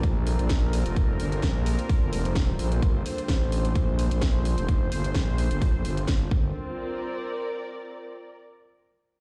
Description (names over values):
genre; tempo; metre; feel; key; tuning
bass house; 129 BPM; 4/4; swing 54% on 16ths; G minor; A4 = 439 Hz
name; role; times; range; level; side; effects
sweeping resonant pad; sustained chords; 0.0-6.5 s; G3 to C5; -37 LUFS; equal; chorus, sidechain pumping
growling FM bass; bass; 0.0-6.5 s; F1 to Bb1; -29 LUFS; equal; overdrive, sidechain pumping
electronic kick drum; drums; 0.0-6.4 s; none; -27 LUFS; equal; studio ambience
garage drum kit; drums; 0.0-6.2 s; hi-hat, snare drum; -37 LUFS; equal; studio ambience
muted studio string section; texture; 0.0-8.4 s; Bb3 to D5; -37 LUFS; equal; sidechain pumping
room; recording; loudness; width
little or no reverb; played on a big sound system in a bare room, stone room reverb; -26 LUFS; mono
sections
0.0-6.5 A section; 6.5-8.4 B section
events
none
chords
0.0 Gmadd9; 6.5 C9sus4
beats
0.03 0.50 | 0.96 1.43 1.90 2.36 | 2.83 3.29 3.75 4.22 | 4.68 5.15 5.62 6.08 | 6.55 7.01 7.48 7.94